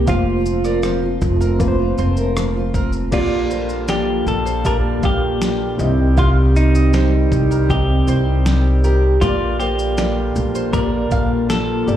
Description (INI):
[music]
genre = acoustic pop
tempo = 79 BPM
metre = 4/4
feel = straight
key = Bb major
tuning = A4 = 441 Hz
[part]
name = clean electric guitar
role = melody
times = 0.0-12.0 s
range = Eb4 to Bb4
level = -22 LUFS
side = right 2 dB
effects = spring reverb, slapback echo
[part]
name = fingerpicked steel-string acoustic guitar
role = accompaniment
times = 0.0-12.0 s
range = G2 to Bb4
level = -21 LUFS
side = equal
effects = double-tracked left and right, slapback echo
[part]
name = reed electric piano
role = accompaniment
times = 0.0-12.0 s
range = Bb3 to A5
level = -27 LUFS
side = left 3 dB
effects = fast tremolo, slapback echo
[part]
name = upright bass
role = bass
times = 0.0-12.0 s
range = F1 to C2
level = -18 LUFS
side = equal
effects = none
[part]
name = mandolin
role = arpeggios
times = 0.1-11.3 s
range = Bb4 to F5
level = -30 LUFS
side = right 6 dB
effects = slapback echo
[part]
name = dusty soul sampler-style drum kit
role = drums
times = 0.1-12.0 s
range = crash cymbal, kick drum, rim click, shaker, snare drum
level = -22 LUFS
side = equal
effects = none
[part]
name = hand-pumped harmonium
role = sustained chords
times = 3.1-12.0 s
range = D3 to G4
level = -29 LUFS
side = equal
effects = none
[sound]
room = small room reverb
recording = live gig heard through the venue's PA, club reverb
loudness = -15 LUFS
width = side -11 dB against mid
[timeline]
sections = 0.0-3.1 A section; 3.1-12.0 B section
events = none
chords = 0.1 Fsus4; 3.1 Bb6; 5.8 Cm; 9.2 Bb6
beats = | 0.08 0.84 1.60 2.36 | 3.13 3.89 4.65 5.41 | 6.17 6.93 7.70 8.46 | 9.22 9.98 10.74 11.50